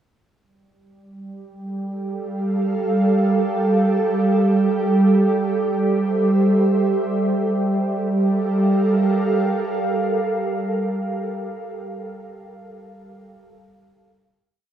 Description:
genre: ambient.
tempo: free time.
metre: none.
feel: none.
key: G dorian.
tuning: A4 = 440 Hz.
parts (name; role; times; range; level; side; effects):
ethereal airy pad; solo; 1.6-11.2 s; G3 to F5; -18 LUFS; right 1 dB; ensemble chorus, built-in reverb, diffuse ambient delay.
room: wet cathedral reverb, RT60 6.1 s.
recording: in a vast, echoing space.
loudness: -17 LUFS.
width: side -9 dB against mid.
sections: 0.4-7.5 A section; 7.5-11.0 final chord.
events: none.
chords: 0.4 Gm7; 3.9 Am/G; 7.5 Gm7.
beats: free time.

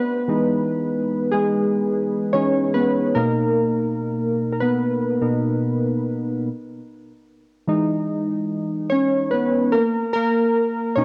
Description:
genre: R&B.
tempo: 73 BPM.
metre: 4/4.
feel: swing 54% on 16ths.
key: unclear.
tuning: A4 = 436 Hz.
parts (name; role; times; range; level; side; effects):
warm analog keys; solo; 0.0-11.0 s; B2 to C#5; -21 LUFS; equal; chorus, cassette tape, analog delay.
room: light reverb.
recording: home recording on cassette.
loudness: -21 LUFS.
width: mono.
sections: 0.0-11.0 A section.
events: synth keys solo 0.0-11.0.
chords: 0.0 Emaj7; 3.2 Bmaj7; 6.4 Emaj7; 9.7 N.C..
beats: 0.70 1.52 2.34 | 3.16 3.98 4.80 5.63 | 6.45 7.27 8.09 8.91 | 9.74 10.56.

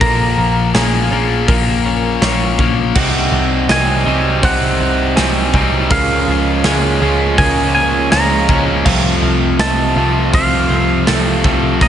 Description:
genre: post-rock.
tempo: 81 BPM.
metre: 4/4.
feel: straight.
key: unclear.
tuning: A4 = 441 Hz.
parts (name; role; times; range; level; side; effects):
twangy electric guitar; melody; 0.0-11.9 s; Eb5 to Bb5; -19 LUFS; right 1 dB; digital delay.
twelve-string electric guitar; arpeggios; 0.0-11.9 s; Bb2 to F4; -24 LUFS; left 2 dB; none.
twelve-string electric guitar; arpeggios; 0.0-11.9 s; Ab4 to Ab5; -24 LUFS; right 4 dB; spring reverb, digital delay.
distorted electric guitar; riff; 0.0-11.9 s; F2 to Db4; -18 LUFS; left 9 dB; distortion.
vintage muted picked electric bass; bass; 0.0-11.9 s; Bb1 to Db2; -18 LUFS; equal; none.
big rock drum kit; drums; 0.0-11.9 s; crash cymbal, hi-hat, kick drum, snare drum; -18 LUFS; right 1 dB; none.
crunchy overdriven guitar; riff; 3.0-11.9 s; Bb2 to Eb4; -19 LUFS; right 11 dB; none.
room: light reverb, small room ambience.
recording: nothing above 10.7 kHz.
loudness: -12 LUFS.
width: side -10 dB against mid.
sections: 0.0-11.9 A section.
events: none.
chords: 0.0 Bbm; 3.0 Cdim; 5.9 Db6; 8.9 F/C.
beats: | 0.01 0.75 1.48 2.22 | 2.96 3.69 4.43 5.17 | 5.91 6.65 7.38 8.12 | 8.86 9.60 10.34 11.08 | 11.82.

